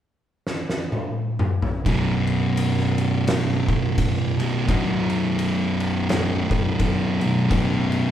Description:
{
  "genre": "stoner and doom metal",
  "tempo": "85 BPM",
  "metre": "4/4",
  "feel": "swing 58% on 8ths",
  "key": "unclear",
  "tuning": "A4 = 440 Hz",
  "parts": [
    { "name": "oversized low-tuned drum kit", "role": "drums", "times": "0.5-8.1 s", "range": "kick drum, ride cymbal, snare drum, toms", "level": "-25 LUFS", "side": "left 1 dB", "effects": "none" },
    { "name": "thick fuzz guitar", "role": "riff", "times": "1.8-8.1 s", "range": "B1 to B2", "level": "-24 LUFS", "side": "right 4 dB", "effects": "distortion" },
    { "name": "thick fuzz guitar", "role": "riff", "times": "1.9-8.1 s", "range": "B1 to B2", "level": "-23 LUFS", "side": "left 3 dB", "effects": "distortion" }
  ],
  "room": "moderate stone room reverb, RT60 1.3 s",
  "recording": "band playing live in one room",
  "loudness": "-20 LUFS",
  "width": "side -10 dB against mid",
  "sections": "0.0-1.9 A section; 1.9-8.1 B section",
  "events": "drum fill 0.5-1.9",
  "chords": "0.0 N.C.; 1.9 B5",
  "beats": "0.46 1.16 | 1.87 2.57 3.28 3.98 | 4.69 5.39 6.10 6.80 | 7.51"
}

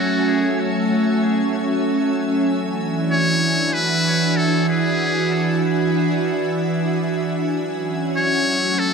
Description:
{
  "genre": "ambient",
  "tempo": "free time",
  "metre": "none",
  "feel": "none",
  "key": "unclear",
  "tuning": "A4 = 440 Hz",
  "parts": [
    { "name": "trumpet with metal mute", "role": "melody", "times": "0.0-8.9 s", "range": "F#4 to C#5", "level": "-23 LUFS", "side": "left 1 dB", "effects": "dub echo" },
    { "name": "soft additive organ-like pad", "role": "sustained chords", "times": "0.0-8.9 s", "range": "E3 to G#5", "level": "-18 LUFS", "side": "right 1 dB", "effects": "ensemble chorus, built-in reverb" }
  ],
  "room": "moderate plate reverb, RT60 2.3 s",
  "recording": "echo-heavy mix",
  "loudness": "-17 LUFS",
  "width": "side -5 dB against mid",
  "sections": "0.0-8.9 A section",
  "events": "none",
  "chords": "0.0 F#m7; 2.5 E7; 7.5 F#m7",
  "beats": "free time"
}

